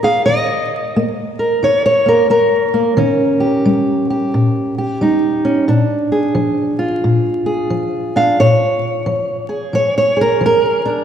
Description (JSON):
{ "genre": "acoustic country blues, solo or duo", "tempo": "89 BPM", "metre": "4/4", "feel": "swing 63% on 8ths", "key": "unclear", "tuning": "A4 = 440 Hz", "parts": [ { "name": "fingerpicked steel-string acoustic guitar", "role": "solo", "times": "0.0-11.0 s", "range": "Bb2 to F5", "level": "-13 LUFS", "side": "equal", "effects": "none" } ], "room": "wet church reverb, RT60 2.4 s", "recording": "recorded in a church or concert hall, vinyl crackle", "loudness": "-13 LUFS", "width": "side -9 dB against mid", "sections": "0.0-11.0 A section", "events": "none", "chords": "0.3 Eb7; 5.7 Bb7" }